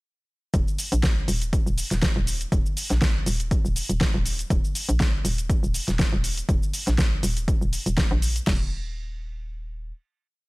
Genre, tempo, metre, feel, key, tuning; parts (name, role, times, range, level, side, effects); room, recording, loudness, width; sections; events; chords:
deep house; 121 BPM; 4/4; swing 55% on 16ths; A4 = 439 Hz
hollow knocking FM bass; bass; 0.5-9.9 s; Eb1 to Bb1; -26 LUFS; equal; sidechain pumping
deep house drum kit; drums; 0.5-8.6 s; crash cymbal, kick drum, snare drum; -23 LUFS; equal; overdrive, studio reverb
deep house drum kit; drums; 0.5-8.5 s; hi-hat, shaker, snare drum; -28 LUFS; equal; overdrive, studio reverb
little or no reverb; dry, gritty hardware recording; -21 LUFS; side -24 dB against mid
0.5-8.5 drop; 8.5-10.5 final note
drop 0.5-8.5